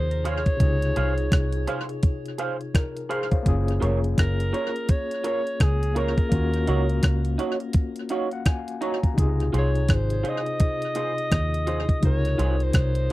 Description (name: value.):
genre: lovers rock reggae.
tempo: 84 BPM.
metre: 4/4.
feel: swing 61% on 16ths.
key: Db major.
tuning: A4 = 440 Hz.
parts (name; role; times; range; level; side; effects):
breathy alto saxophone; melody; 0.0-13.1 s; Ab4 to Eb5; -30 LUFS; equal; tape echo.
overdriven tine electric piano; accompaniment; 0.0-13.1 s; C3 to Bb5; -30 LUFS; left 3 dB; fast tremolo, tape echo.
vintage muted fingered electric bass; bass; 0.0-13.1 s; F1 to Eb2; -24 LUFS; equal; none.
gated 80s digital drum machine; drums; 0.1-13.1 s; hi-hat, kick drum, rim click; -22 LUFS; equal; none.
electric guitar through a small old amp; stabs; 0.2-13.1 s; Eb4 to F5; -28 LUFS; right 4 dB; ensemble chorus.
room: little or no reverb.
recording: dry, close 1970s-style studio recording.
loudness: -21 LUFS.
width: side -17 dB against mid.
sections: 0.0-13.1 A section.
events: tine electric piano fill 7.7-9.2.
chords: 0.0 Dbmaj7; 3.5 Gbmaj7; 6.3 Ebm7; 9.2 Dbmaj7.